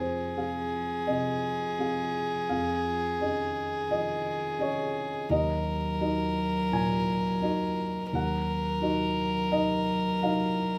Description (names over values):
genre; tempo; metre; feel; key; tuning
neoclassical piano and strings; 85 BPM; 4/4; rubato; Eb dorian; A4 = 440 Hz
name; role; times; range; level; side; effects
rich violin; melody; 0.0-10.8 s; Ab4 to Bb4; -33 LUFS; equal; none
warm cello; second line; 0.0-10.8 s; Eb3 to Gb3; -36 LUFS; equal; none
felt-muted upright piano; accompaniment; 0.0-10.8 s; Eb2 to Ab5; -33 LUFS; equal; none
room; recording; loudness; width
light reverb; none; -29 LUFS; mono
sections
0.0-10.8 A section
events
none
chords
0.0 Fm; 2.5 Dbadd9/F; 5.3 Ebm